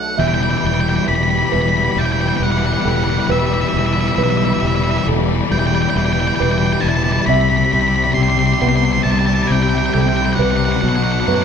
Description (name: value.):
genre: rock.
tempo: 68 BPM.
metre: 4/4.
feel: straight.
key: E minor.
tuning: A4 = 437 Hz.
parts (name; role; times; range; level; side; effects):
octave-fuzz lead guitar; melody; 0.0-11.4 s; E5 to C6; -20 LUFS; right 2 dB; distortion.
rich studio string section; sustained chords; 0.0-11.4 s; B3 to B5; -28 LUFS; left 2 dB; none.
clean electric guitar; arpeggios; 0.0-11.4 s; E2 to G4; -25 LUFS; right 2 dB; none.
felt-muted upright piano; arpeggios; 0.0-11.4 s; B3 to E5; -24 LUFS; right 3 dB; none.
fuzz fingered electric bass; bass; 0.0-11.4 s; E1 to F#2; -19 LUFS; equal; overdrive.
thick fuzz guitar; riff; 0.2-11.4 s; B2 to G3; -19 LUFS; left 5 dB; distortion.
room: moderate large studio reverb, RT60 0.9 s.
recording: band playing live in one room.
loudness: -14 LUFS.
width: side -7 dB against mid.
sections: 0.2-11.4 A section.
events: build-up 0.2-11.4.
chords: 0.2 Em; 7.3 C; 10.8 Bm7.